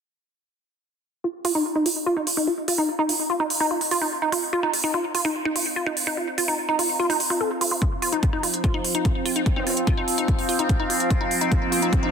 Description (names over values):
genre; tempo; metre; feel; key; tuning
psychedelic trance; 146 BPM; 4/4; straight; unclear; A4 = 440 Hz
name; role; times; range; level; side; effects
woody wave-folded pluck; riff; 1.2-12.1 s; Eb4 to A4; -24 LUFS; moving between left 5 dB and right 2 dB; chorus, auto-pan, sidechain pumping, tape echo
warbly tape-like pad; texture; 2.1-12.1 s; C4 to F5; -31 LUFS; right 2 dB; chorus, built-in reverb, sidechain pumping
electronic hi-hat; drums; 1.4-12.0 s; none; -26 LUFS; right 3 dB; none
overtone-sweeping drone; sustained chords; 8.1-12.1 s; F3 to C4; -28 LUFS; equal; chorus, built-in reverb, sidechain pumping
electronic kick drum; drums; 7.8-12.0 s; none; -22 LUFS; equal; none
vowel-sweep wobble bass; second line; 9.6-9.7 s; C4; -35 LUFS; left 3 dB; chorus, sidechain pumping, high-pass filter, digital delay
riser; sound effects; 11.4-12.1 s; none; -33 LUFS; equal; none
room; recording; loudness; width
moderate lush hall reverb, RT60 1.9 s, digital ambience; dense, heavily limited modern master; -20 LUFS; side -6 dB against mid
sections
1.2-12.1 A section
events
fade-in on ambient pad 1.2-12.1; filter sweep on synth arpeggio sound 1.2-12.1; riser 11.4-12.1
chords
1.2 F5